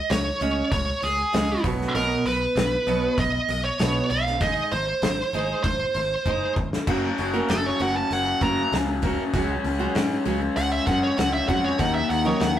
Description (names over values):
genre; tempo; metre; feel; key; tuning
quiet-loud alternative rock; 98 BPM; 4/4; straight; Gb major from 6.9 s; A4 = 441 Hz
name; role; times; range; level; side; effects
high-gain lead guitar; melody; 0.0-12.6 s; G#4 to Bb5; -24 LUFS; right 1 dB; distortion, slapback echo
picked steel-string acoustic guitar; arpeggios; 0.0-12.5 s; B2 to Bb4; -28 LUFS; right 3 dB; none
modern bright picked electric bass; bass; 0.1-12.6 s; F#1 to Ab2; -30 LUFS; equal; none
loose indie drum kit; drums; 0.1-12.6 s; crash cymbal, hi-hat, kick drum, snare drum; -28 LUFS; left 1 dB; none
raw garage guitar; riff; 6.9-12.6 s; Gb2 to Eb4; -26 LUFS; left 3 dB; overdrive
room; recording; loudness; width
moderate studio reverb, RT60 0.6 s; rough rehearsal-room recording; -21 LUFS; side -11 dB against mid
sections
0.0-6.9 A section; 6.9-12.6 B section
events
drum fill 6.3-6.9; lead electric guitar solo 6.9-12.6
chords
0.0 C#5; 1.6 B5; 4.4 G#; 6.9 Gb; 9.3 Dbsus4; 11.8 Ebm7